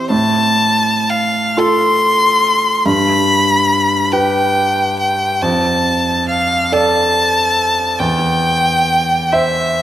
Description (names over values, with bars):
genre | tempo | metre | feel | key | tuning
classical, romantic duo for violin and grand piano | 40-49 BPM (dotted quarters) | 12/8 | rubato | C major | A4 = 438 Hz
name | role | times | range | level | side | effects
clear violin | melody | 0.0-9.8 s | E5 to C6 | -14 LUFS | left 1 dB | none
bright grand piano | accompaniment | 0.0-9.8 s | E2 to E5 | -17 LUFS | right 2 dB | none
room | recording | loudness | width
moderate concert hall reverb, RT60 2.1 s | none | -12 LUFS | side -12 dB against mid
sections
0.0-9.8 A section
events
none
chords
0.1 F/A; 2.9 G; 5.4 Dm/F; 8.0 C/E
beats
| 0.11 1.58 2.85 4.14 | 5.42 6.72 7.99 9.31